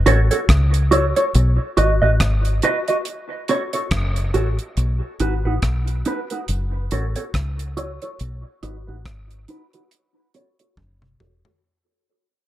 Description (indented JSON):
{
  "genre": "dub reggae",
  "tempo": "70 BPM",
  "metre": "4/4",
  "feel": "swing 58% on 16ths",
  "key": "F# dorian",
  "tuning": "A4 = 440 Hz",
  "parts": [
    { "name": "deep dub fingered electric bass", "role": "bass", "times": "0.0-11.4 s", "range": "E1 to C#2", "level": "-19 LUFS", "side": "equal", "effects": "none" },
    { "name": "mellow electric guitar", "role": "accompaniment", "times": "0.1-11.5 s", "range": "D#4 to D#5", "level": "-21 LUFS", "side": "right 2 dB", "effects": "phaser, low-pass filter, tape echo" },
    { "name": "deep reggae drum kit", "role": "drums", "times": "0.1-11.6 s", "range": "hi-hat, kick drum, rim click, toms", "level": "-24 LUFS", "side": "equal", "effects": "none" }
  ],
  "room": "light reverb",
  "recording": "none",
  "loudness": "-18 LUFS",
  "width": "side -14 dB against mid",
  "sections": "0.0-11.6 A section",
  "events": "filter sweep on clean electric guitar 0.0-11.6; fade-out 0.7-11.6; drum fill 10.8-11.6",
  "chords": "0.0 F#m; 1.3 B; 3.1 F#m; 4.8 B; 6.5 F#m; 8.2 B; 9.9 F#m"
}